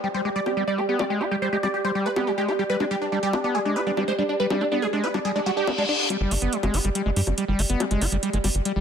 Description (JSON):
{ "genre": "psychedelic trance", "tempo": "141 BPM", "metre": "4/4", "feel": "straight", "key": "G major", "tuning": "A4 = 441 Hz", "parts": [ { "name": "supersaw stab", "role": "melody", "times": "0.0-6.0 s", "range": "D4 to D5", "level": "-26 LUFS", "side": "equal", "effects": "phaser, cassette tape, ping-pong delay" }, { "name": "screaming distorted acid line", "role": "riff", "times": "0.0-8.8 s", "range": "G3 to G4", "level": "-27 LUFS", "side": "equal", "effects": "distortion, chorus, auto-pan, ping-pong delay" }, { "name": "warbly tape-like pad", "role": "texture", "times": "0.0-8.8 s", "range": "G4 to G5", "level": "-29 LUFS", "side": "right 2 dB", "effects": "chorus, built-in reverb" }, { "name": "vowel-sweep wobble bass", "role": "second line", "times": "0.5-4.9 s", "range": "G3 to B3", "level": "-37 LUFS", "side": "right 2 dB", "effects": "none" }, { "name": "electronic bongos and hi-hat", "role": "drums", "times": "0.5-8.7 s", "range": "none", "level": "-30 LUFS", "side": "left 3 dB", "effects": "none" }, { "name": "reverse cymbal", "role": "sound effects", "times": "5.4-6.1 s", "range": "none", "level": "-27 LUFS", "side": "left 3 dB", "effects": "none" }, { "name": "tight sequencer bass", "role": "bass", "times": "6.2-8.8 s", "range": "G1 to G2", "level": "-24 LUFS", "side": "equal", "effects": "none" } ], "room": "light reverb, digital ambience", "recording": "none", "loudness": "-22 LUFS", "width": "side -8 dB against mid", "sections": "0.0-6.1 A section; 6.1-8.8 B section", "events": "reverse cymbal 5.4-6.1; build-up 6.1-8.8", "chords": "0.0 G5" }